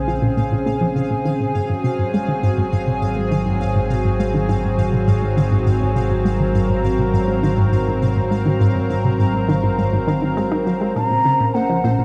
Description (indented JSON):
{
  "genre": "ambient, sequencer-driven space music",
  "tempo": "102 BPM",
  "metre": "4/4",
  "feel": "straight",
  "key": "unclear",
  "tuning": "A4 = 440 Hz",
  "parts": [
    { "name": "lush unison pad", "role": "sustained chords", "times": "0.0-12.0 s", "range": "Db3 to Bb4", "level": "-23 LUFS", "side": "equal", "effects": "chorus" },
    { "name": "fat analog bass", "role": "bass", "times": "0.0-12.0 s", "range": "Ab1 to Bb1", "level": "-26 LUFS", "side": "equal", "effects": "none" },
    { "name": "pulsing gated texture", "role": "texture", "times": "0.0-12.0 s", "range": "C5 to F5", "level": "-39 LUFS", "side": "equal", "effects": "chorus, built-in reverb" },
    { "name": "resonant blip pluck", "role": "riff", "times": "0.1-12.0 s", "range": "Ab2 to Eb4", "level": "-22 LUFS", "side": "equal", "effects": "chorus, delay" },
    { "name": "mellow hollow concert flute", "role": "melody", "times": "11.0-12.0 s", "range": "Gb5 to Bb5", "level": "-21 LUFS", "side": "equal", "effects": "delay" }
  ],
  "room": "wet plate reverb, RT60 2.8 s",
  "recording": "echo-heavy mix, cassette tape",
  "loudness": "-19 LUFS",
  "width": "mono",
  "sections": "0.0-12.0 A section",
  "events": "fade-in on synth texture 0.0-12.0; filter sweep on synth arpeggio sound 0.0-12.0",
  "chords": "0.0 Bbmadd9; 1.5 Ab7; 11.0 Bbmadd9"
}